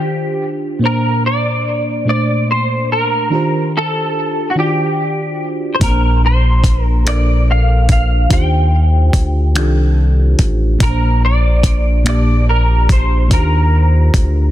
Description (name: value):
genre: slow six-eight R&B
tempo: 48 BPM (dotted quarters)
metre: 6/8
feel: straight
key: Bb major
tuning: A4 = 440 Hz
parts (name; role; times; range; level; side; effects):
- semi-hollow electric guitar; melody; 0.0-14.5 s; Gb4 to G5; -19 LUFS; equal; ensemble chorus, digital delay
- mellow FM electric piano; accompaniment; 0.0-14.5 s; Bb2 to A5; -19 LUFS; right 1 dB; chorus
- round analog bass; bass; 5.8-14.5 s; A1 to Eb2; -12 LUFS; equal; none
- dusty soul sampler-style drum kit; drums; 5.8-14.3 s; finger snaps, hi-hat, kick drum; -14 LUFS; equal; overdrive, soft clipping on snare
room: digital ambience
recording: dense, heavily limited modern master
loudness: -12 LUFS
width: side -13 dB against mid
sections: 0.0-14.5 A section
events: none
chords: 0.0 Ebmaj13; 0.8 Bbmaj9; 3.3 Ebmaj13; 5.8 Bbmaj9; 8.3 Ebmaj13; 10.8 Bbmaj9; 13.3 Ebmaj13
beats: | 0.81 2.06 | 3.31 4.56 | 5.81 7.06 | 8.31 9.56 | 10.81 12.06 | 13.31